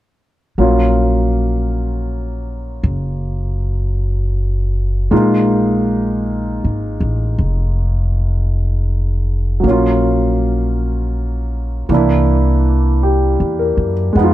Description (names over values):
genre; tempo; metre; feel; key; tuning
jazz ballad; 53 BPM; 4/4; swing 66% on 8ths; unclear; A4 = 440 Hz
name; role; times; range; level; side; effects
warm concert grand piano; accompaniment; 0.6-14.3 s; E3 to Bb4; -18 LUFS; equal; none
upright bass; bass; 0.6-14.3 s; F1 to Gb2; -16 LUFS; equal; none
room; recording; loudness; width
light reverb; dark, warm production; -14 LUFS; side -14 dB against mid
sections
0.6-14.3 A section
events
none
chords
0.6 Gbmaj7; 5.1 Bb7sus4; 9.6 Gbmaj7/Bb; 11.9 C7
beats
| 0.58 1.72 2.85 3.98 | 5.12 6.25 7.38 8.51 | 9.64 10.77 11.89 13.02 | 14.14